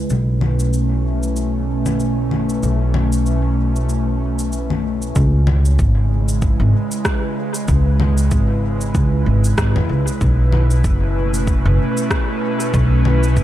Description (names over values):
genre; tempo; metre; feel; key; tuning
ambient dub; 95 BPM; 4/4; swing 57% on 16ths; C# minor; A4 = 439 Hz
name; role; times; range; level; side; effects
airy breathy pad; sustained chords; 0.0-13.4 s; B2 to B4; -21 LUFS; equal; chorus
upright bass; bass; 0.0-13.4 s; F#1 to E2; -16 LUFS; equal; none
electronic cabasa, congas and rim click; drums; 0.1-13.4 s; none; -25 LUFS; left 2 dB; dub echo
electronic kick drum; drums; 5.2-13.4 s; none; -19 LUFS; equal; none
room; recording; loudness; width
little or no reverb; none; -15 LUFS; side -13 dB against mid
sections
0.0-5.2 A section; 5.2-13.4 B section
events
filter sweep on analog synth pad 0.0-5.2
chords
0.1 B7sus4; 5.2 C#m7; 10.2 B7sus4